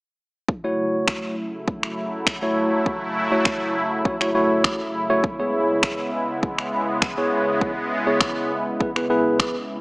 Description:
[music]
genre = dance-pop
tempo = 101 BPM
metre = 4/4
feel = straight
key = F# minor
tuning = A4 = 440 Hz
[part]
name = sweeping resonant pad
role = sustained chords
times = 0.5-9.8 s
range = C#3 to E4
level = -25 LUFS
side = equal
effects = chorus, sidechain pumping
[part]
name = house drum kit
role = drums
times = 0.5-9.5 s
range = finger snaps, kick drum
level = -23 LUFS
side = equal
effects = overdrive
[part]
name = tine electric piano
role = accompaniment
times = 0.6-9.6 s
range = A3 to C#5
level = -21 LUFS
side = equal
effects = medium stereo tremolo, sidechain pumping
[sound]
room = light reverb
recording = small speaker sound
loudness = -20 LUFS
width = side -28 dB against mid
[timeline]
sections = 0.5-9.8 A section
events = none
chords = 0.5 F#m7; 5.2 C#m7

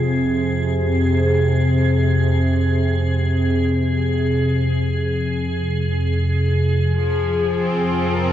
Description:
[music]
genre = dark ambient drone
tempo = free time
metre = none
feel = none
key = F minor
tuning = A4 = 442 Hz
[part]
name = analog drone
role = drone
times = 0.0-8.3 s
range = F2 to C3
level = -18 LUFS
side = equal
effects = chorus
[part]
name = icy glass pad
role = texture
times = 0.0-8.3 s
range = F4 to Ab4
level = -24 LUFS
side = right 3 dB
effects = chorus, built-in reverb
[part]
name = mellow horn-like synth lead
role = melody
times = 6.9-8.3 s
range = Ab4 to Bb4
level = -22 LUFS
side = left 5 dB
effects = wide subtle chorus, ping-pong delay
[part]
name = clear chamber cello section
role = sustained chords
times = 7.0-8.3 s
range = F3 to C4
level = -22 LUFS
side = left 1 dB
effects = none
[sound]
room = wet huge ambient reverb, RT60 7.7 s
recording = worn, warbling old tape, cassette tape, warbly pitch drift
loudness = -17 LUFS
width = side -11 dB against mid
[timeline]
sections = 0.0-7.0 A section; 7.0-8.3 B section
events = none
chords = 0.0 F5

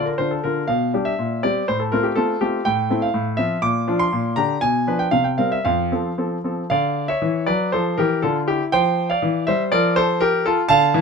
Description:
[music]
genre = classical-period piano sonatina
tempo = 120 BPM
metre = 2/4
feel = rubato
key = F major, D minor from 6.7 s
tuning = A4 = 437 Hz
[part]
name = clear grand piano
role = solo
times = 0.0-11.0 s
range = F2 to D6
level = -18 LUFS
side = equal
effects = none
[sound]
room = light reverb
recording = close, detailed microphones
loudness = -18 LUFS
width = side -5 dB against mid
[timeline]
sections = 0.0-6.7 A section; 6.7-11.0 B section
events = none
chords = 0.0 Bb; 0.7 G7/B; 1.2 C7/Bb; 1.7 F/A; 2.7 Am; 3.1 F/A; 3.6 Bb; 4.1 Gm/Bb; 4.6 Bdim7; 5.1 C5; 5.6 F; 6.7 Dm; 7.2 Dmaj13/E; 7.7 Dm; 8.7 F5; 9.2 Dm11/E; 9.7 F

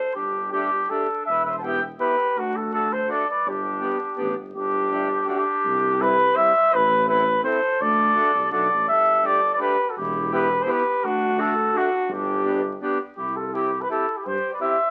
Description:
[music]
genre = alpine folk, alpine dance band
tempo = 166 BPM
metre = 3/4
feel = rubato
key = G major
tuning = A4 = 440 Hz
[part]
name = warm flugelhorn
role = melody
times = 0.0-14.9 s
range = F#4 to A5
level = -23 LUFS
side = equal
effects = none
[part]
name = mellow trumpet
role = second line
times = 0.0-14.9 s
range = D4 to F#5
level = -36 LUFS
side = equal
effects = none
[part]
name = mellow tuba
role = bass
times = 0.2-14.4 s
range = E1 to G2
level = -32 LUFS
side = equal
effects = none
[part]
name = accordion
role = accompaniment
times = 0.5-14.8 s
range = G3 to G4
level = -30 LUFS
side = equal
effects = none
[sound]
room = moderate studio reverb, RT60 0.7 s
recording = very old 78 rpm record, vinyl crackle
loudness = -22 LUFS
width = mono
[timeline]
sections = 0.0-4.6 A section; 4.6-13.2 A section; 13.2-14.9 B section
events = none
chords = 0.2 Gsus2; 1.3 Em; 2.4 D; 3.4 G; 4.6 Gsus2; 5.6 Cmaj7; 6.7 Amadd9; 7.8 D7; 8.9 Gsus2; 10.0 Em; 11.0 D; 12.1 G; 13.2 C

